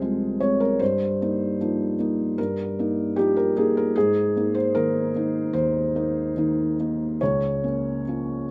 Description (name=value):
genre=neoclassical minimalist piano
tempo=69-78 BPM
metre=4/4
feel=rubato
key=unclear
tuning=A4 = 441 Hz
part: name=felt-muted upright piano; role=solo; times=0.0-8.5 s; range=C2 to Db5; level=-24 LUFS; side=equal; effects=none
room=moderate small room reverb, RT60 0.5 s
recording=none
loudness=-24 LUFS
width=mono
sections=0.0-8.5 A section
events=none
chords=0.0 Fm; 0.8 Ebadd9/G; 3.9 Abadd9; 7.2 Db6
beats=0.02 | 0.81 1.60 2.38 3.16 | 3.95 4.74 5.54 6.35 | 7.20 8.06